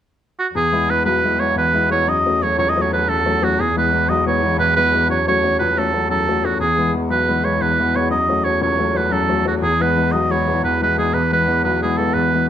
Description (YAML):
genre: celtic folk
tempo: 119 BPM (dotted quarters)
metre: 9/8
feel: straight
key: E major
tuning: A4 = 440 Hz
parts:
  - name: warm oboe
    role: melody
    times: 0.4-12.5 s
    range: F#4 to D#5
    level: -18 LUFS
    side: right 3 dB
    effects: slapback echo
  - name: rich cello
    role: drone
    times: 0.5-12.5 s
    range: E2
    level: -25 LUFS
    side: equal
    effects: none
  - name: clear upright piano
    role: accompaniment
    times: 0.6-12.5 s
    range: B1 to E4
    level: -20 LUFS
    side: left 4 dB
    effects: none
room: light reverb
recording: close, detailed microphones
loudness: -15 LUFS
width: side -10 dB against mid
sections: 0.6-12.5 A section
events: none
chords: 0.0 N.C.; 0.6 E; 2.1 F#m; 3.6 E; 5.1 F#m; 6.6 E; 8.1 F#m; 9.6 E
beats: 0.05 | 0.55 1.06 1.56 | 2.07 2.57 3.08 | 3.58 4.08 4.59 | 5.09 5.59 6.10 | 6.60 7.10 7.61 | 8.11 8.61 9.12 | 9.62 10.12 10.63 | 11.13 11.64 12.14